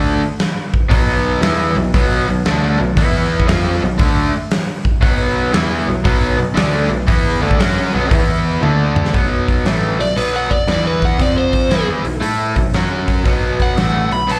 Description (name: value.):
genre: blues rock power trio and southern rock.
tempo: 117 BPM.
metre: 4/4.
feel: swing 66% on 8ths.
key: unclear.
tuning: A4 = 439 Hz.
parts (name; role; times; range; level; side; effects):
raw garage guitar; riff; 0.0-14.4 s; A2 to A4; -20 LUFS; equal; overdrive, slapback echo.
modern bright picked electric bass; bass; 0.0-14.4 s; A1 to A2; -23 LUFS; equal; none.
big rock drum kit; drums; 0.4-14.4 s; hi-hat, kick drum, snare drum, toms; -20 LUFS; equal; none.
biting lead guitar; melody; 10.0-14.4 s; B4 to B5; -22 LUFS; equal; overdrive, slapback echo, analog delay.
room: light reverb.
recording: live gig heard through the venue's PA, club reverb.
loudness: -16 LUFS.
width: mono.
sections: 0.0-9.1 A section; 9.1-14.4 B section.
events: drum fill 8.6-9.1.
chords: 0.0 B5; 3.0 E5; 3.5 B5; 8.1 E5; 8.6 D5; 9.1 B5; 10.7 E5; 11.2 F5; 11.7 B5; 12.7 F#5; 13.3 B5.